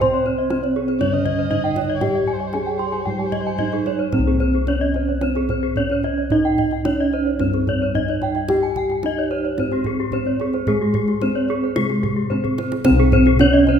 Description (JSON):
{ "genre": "Balinese gamelan", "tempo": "110 BPM", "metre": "4/4", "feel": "straight", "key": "C pelog", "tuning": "A4 = 440 Hz", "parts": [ { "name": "gamelan-type bronze metallophone", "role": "melody", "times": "0.0-13.8 s", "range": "Ab3 to C5", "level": "-22 LUFS", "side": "right 2 dB", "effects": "none" }, { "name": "dark erhu", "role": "second line", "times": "0.0-3.9 s", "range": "C5 to Eb5", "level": "-30 LUFS", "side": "right 2 dB", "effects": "none" }, { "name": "gamelan-type bronze metallophone", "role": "accompaniment", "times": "0.0-4.1, 12.9-13.8 s", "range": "C3 to C4", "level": "-27 LUFS", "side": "right 3 dB", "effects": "none" }, { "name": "gamelan-type bronze metallophone", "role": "arpeggios", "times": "0.0-13.7 s", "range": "G4 to C6", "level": "-24 LUFS", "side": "left 4 dB", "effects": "none" }, { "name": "gamelan-type bossed gongs", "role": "bass", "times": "0.0-13.8 s", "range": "C2 to C5", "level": "-22 LUFS", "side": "left 2 dB", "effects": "none" }, { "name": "kendang", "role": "percussion", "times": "0.0-13.7 s", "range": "none", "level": "-28 LUFS", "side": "right 3 dB", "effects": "none" }, { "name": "gamelan-type bronze metallophone", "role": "arpeggios", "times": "0.1-13.8 s", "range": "G4 to C6", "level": "-28 LUFS", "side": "right 6 dB", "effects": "none" } ], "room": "moderate scoring stage reverb, RT60 1.5 s", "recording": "minimal, uncompressed stereo recording", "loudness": "-17 LUFS", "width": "side -8 dB against mid", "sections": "0.0-4.1 A section; 4.1-13.8 B section", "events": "drum fill 12.3-12.9", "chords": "none" }